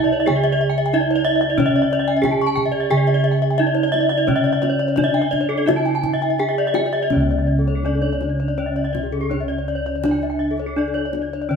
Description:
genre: Balinese gamelan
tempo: 82-92 BPM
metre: 4/4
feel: straight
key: C# pelog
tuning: A4 = 440 Hz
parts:
  - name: gamelan-type bronze metallophone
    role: melody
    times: 0.0-11.6 s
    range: C#4 to G#4-45c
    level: -23 LUFS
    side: right 3 dB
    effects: none
  - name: gamelan-type bronze metallophone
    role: arpeggios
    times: 0.0-11.6 s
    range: G#4-45c to C#6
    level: -24 LUFS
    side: left 5 dB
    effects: none
  - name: gamelan-type bronze metallophone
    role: arpeggios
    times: 0.0-11.3 s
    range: G#4-45c to A5-40c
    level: -24 LUFS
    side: right 1 dB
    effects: none
  - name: gamelan-type bossed gongs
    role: bass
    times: 0.0-11.6 s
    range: C#2 to G#4-45c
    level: -22 LUFS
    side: right 1 dB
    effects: none
  - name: kendang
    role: percussion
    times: 0.3-11.3 s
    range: none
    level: -27 LUFS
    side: left 4 dB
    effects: none
room: moderate stone room reverb, RT60 1.4 s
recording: band playing live in one room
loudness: -17 LUFS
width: side -6 dB against mid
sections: 0.0-7.1 A section; 7.1-11.6 B section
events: none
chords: none

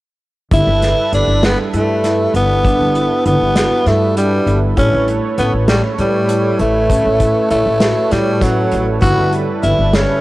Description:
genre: progressive instrumental, band music in an uneven meter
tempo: 198 BPM (eighths)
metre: 7/8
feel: straight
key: G lydian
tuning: A4 = 440 Hz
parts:
  - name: growling tenor saxophone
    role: melody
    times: 0.5-10.2 s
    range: F#3 to F#4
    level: -16 LUFS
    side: equal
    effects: tape echo
  - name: warm analog pad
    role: accompaniment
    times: 0.5-10.2 s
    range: G3 to C#5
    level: -21 LUFS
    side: right 5 dB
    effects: chorus, cassette tape
  - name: marimba with medium mallets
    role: arpeggios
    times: 0.5-10.1 s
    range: D3 to F#4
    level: -22 LUFS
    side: left 1 dB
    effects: cassette tape
  - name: upright bass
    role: bass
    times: 0.5-10.0 s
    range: G1 to A2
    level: -18 LUFS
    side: equal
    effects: none
  - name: unplugged drum kit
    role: drums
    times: 0.5-10.1 s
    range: hi-hat, kick drum, snare drum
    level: -18 LUFS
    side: equal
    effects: none
room: light reverb, small room ambience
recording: home recording on cassette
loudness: -12 LUFS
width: side -18 dB against mid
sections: 0.5-10.2 A section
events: none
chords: 0.5 G69; 4.8 A9; 9.0 G69

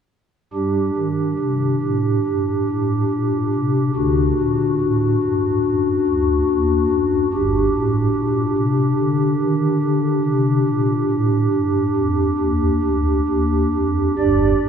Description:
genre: classical, chorale-style piece for pipe organ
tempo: 70 BPM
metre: 4/4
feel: rubato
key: G minor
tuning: A4 = 440 Hz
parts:
  - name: pipe organ, stopped flute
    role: solo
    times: 0.5-14.7 s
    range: G1 to D5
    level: -16 LUFS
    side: equal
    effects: none
room: wet church reverb, RT60 3.8 s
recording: none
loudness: -16 LUFS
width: side -7 dB against mid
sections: 0.5-14.2 A section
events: none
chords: 0.5 G5; 4.0 D; 7.3 G5

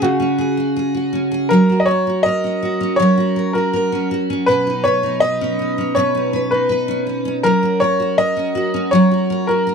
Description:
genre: pop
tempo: 81 BPM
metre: 4/4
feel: straight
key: F# major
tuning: A4 = 442 Hz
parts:
  - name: bright upright piano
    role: melody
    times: 0.0-9.7 s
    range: F#4 to D#5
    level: -18 LUFS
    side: left 1 dB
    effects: none
  - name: picked steel-string acoustic guitar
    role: accompaniment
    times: 0.0-9.7 s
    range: B2 to B4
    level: -17 LUFS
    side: right 1 dB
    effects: double-tracked left and right
room: light reverb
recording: dry, close 1970s-style studio recording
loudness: -15 LUFS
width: side -6 dB against mid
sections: 0.0-1.5 A section; 1.5-9.7 B section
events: none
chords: 0.0 C#sus4; 1.5 F#; 4.5 Badd9; 7.4 F#

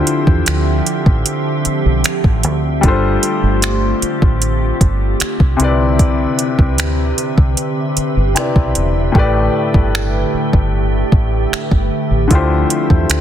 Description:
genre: contemporary R&B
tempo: 76 BPM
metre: 4/4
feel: straight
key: D dorian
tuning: A4 = 440 Hz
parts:
  - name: clear grand piano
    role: accompaniment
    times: 0.0-13.2 s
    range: A2 to D5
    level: -19 LUFS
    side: left 4 dB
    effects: none
  - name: glassy FM pad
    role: sustained chords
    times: 0.0-13.2 s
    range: D3 to E5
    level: -20 LUFS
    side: right 2 dB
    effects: ensemble chorus, built-in reverb
  - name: smooth R&B drum kit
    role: drums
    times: 0.1-13.2 s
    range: finger snaps, hi-hat, kick drum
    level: -14 LUFS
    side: right 1 dB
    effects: overdrive, soft clipping on snare
  - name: deep dub fingered electric bass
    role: bass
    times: 0.3-13.2 s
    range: E1 to E2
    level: -16 LUFS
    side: equal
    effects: none
room: little or no reverb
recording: dense, heavily limited modern master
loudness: -12 LUFS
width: side -10 dB against mid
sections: 0.0-13.2 A section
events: hi-hats muted 9.2-12.3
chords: 0.0 Dm11; 2.8 G9sus4; 5.6 Cmaj9; 9.2 A9sus4; 12.3 Dm11

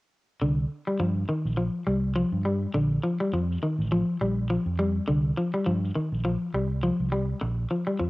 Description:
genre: afrobeat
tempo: 103 BPM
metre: 4/4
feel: swing 56% on 16ths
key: C dorian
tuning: A4 = 440 Hz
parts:
  - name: electric guitar at the edge of break-up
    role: arpeggios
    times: 0.4-8.1 s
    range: D3 to G3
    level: -26 LUFS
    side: left 1 dB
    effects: cassette tape
  - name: fingered electric bass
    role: bass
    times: 0.4-8.1 s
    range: A1 to G2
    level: -28 LUFS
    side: right 1 dB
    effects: none
room: light reverb, digital ambience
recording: home recording on cassette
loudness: -24 LUFS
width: side -20 dB against mid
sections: 0.4-8.1 A section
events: none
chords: 0.4 C5; 2.8 Bb5; 5.1 C5; 7.4 Bb5

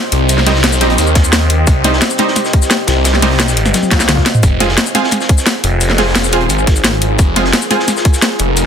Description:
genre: dark technical drum and bass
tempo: 174 BPM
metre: 4/4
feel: straight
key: F minor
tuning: A4 = 441 Hz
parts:
  - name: deep dark ambient pad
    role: sustained chords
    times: 0.0-8.7 s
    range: C4 to Eb5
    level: -20 LUFS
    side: equal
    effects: chorus, built-in reverb, sidechain pumping
  - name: phased detuned saw bass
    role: bass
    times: 0.1-8.7 s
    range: F1 to Eb2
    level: -14 LUFS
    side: equal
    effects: phaser
  - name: crunchy breakbeat drum kit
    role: drums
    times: 0.1-8.7 s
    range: hi-hat, snare drum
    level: -23 LUFS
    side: equal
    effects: high-pass filter on hats, high-pass filter on snare, high-pass filter on room
  - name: drum and bass drum kit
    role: drums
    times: 0.1-8.6 s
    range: hi-hat, shaker, snare drum, toms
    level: -14 LUFS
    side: left 1 dB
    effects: overdrive
  - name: orchestra-hit-like synth stab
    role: stabs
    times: 0.5-7.8 s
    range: G3 to Ab4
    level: -17 LUFS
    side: right 3 dB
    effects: built-in reverb, ping-pong delay
  - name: electronic kick drum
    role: drums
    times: 1.2-8.1 s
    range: none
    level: -11 LUFS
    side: equal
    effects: overdrive
  - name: swell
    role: sound effects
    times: 3.9-4.4 s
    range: none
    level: -24 LUFS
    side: left 4 dB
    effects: none
room: digital ambience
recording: dense, heavily limited modern master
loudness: -10 LUFS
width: side -8 dB against mid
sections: 0.0-8.7 A section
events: drum fill 3.7-4.4; swell 3.9-4.4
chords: 0.0 Cm; 4.4 Fm

